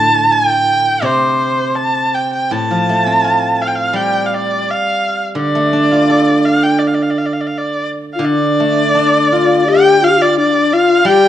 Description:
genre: chinese traditional, Chinese chamber ensemble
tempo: 84 BPM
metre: 2/4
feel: rubato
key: D yu mode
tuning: A4 = 442 Hz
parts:
  - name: clear erhu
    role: melody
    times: 0.0-11.3 s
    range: C5 to A5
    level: -14 LUFS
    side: right 1 dB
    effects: none
  - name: steel-string zither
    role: accompaniment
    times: 0.0-11.3 s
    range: A2 to A4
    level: -16 LUFS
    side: right 1 dB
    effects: none
  - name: breathy mellow xiao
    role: second line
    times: 8.2-11.3 s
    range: D4 to G4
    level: -13 LUFS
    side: left 5 dB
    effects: none
room: moderate recital hall reverb, RT60 1.7 s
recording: dark, warm production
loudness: -11 LUFS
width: side -11 dB against mid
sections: 0.0-8.2 A section; 8.2-11.3 B section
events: none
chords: none

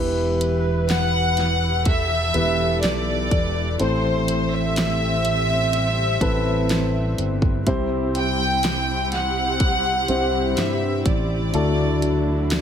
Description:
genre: pop ballad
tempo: 62 BPM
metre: 4/4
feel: straight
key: E minor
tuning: A4 = 441 Hz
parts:
  - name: dark baby grand piano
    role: accompaniment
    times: 0.0-12.6 s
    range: A2 to C5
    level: -25 LUFS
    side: left 1 dB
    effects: none
  - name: dark studio string section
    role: sustained chords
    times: 0.0-12.6 s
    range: C3 to B4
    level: -30 LUFS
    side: right 2 dB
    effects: stereo widening
  - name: sustaining fretless electric bass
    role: bass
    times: 0.0-12.6 s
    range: E1 to G2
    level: -24 LUFS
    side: equal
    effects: ensemble chorus
  - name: pop drum kit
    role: drums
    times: 0.4-12.6 s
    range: hi-hat, kick drum, snare drum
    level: -24 LUFS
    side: equal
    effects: none
  - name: warm studio violin section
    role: melody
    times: 0.9-12.5 s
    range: C5 to G5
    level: -23 LUFS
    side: equal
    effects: none
room: light reverb, digital ambience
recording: none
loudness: -18 LUFS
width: side -8 dB against mid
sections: 0.0-12.6 A section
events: none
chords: 0.0 Em; 3.8 Amadd9; 7.7 C; 11.5 Dadd9

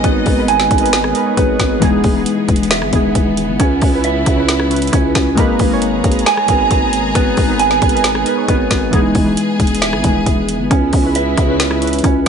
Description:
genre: hip hop, trap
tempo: 135 BPM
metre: 4/4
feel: half-time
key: G# minor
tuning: A4 = 440 Hz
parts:
  - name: warbly lo-fi synth keys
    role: accompaniment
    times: 0.0-12.3 s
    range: C#3 to D#5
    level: -19 LUFS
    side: left 1 dB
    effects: chorus
  - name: warm studio string section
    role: sustained chords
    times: 0.0-12.3 s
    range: C#3 to A#5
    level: -23 LUFS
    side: left 1 dB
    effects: none
  - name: mellow electric guitar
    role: arpeggios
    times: 0.0-12.3 s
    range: G#3 to G#5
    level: -16 LUFS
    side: right 3 dB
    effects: vibrato effect, digital delay
  - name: growling 808-style bass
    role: bass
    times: 0.0-12.3 s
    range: E1 to C#2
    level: -20 LUFS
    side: left 1 dB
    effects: none
  - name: trap drum kit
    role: drums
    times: 0.0-12.3 s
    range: hi-hat, kick drum, rim click, snare drum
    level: -16 LUFS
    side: left 1 dB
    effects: none
room: little or no reverb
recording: nothing above 11.0 kHz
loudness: -12 LUFS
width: side -7 dB against mid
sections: 0.0-12.3 A section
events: synth keys fill 0.9-1.8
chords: 0.0 G#madd9; 1.8 Emaj7; 3.6 C#m7; 5.4 G#madd9; 8.9 Emaj7; 10.7 C#m7

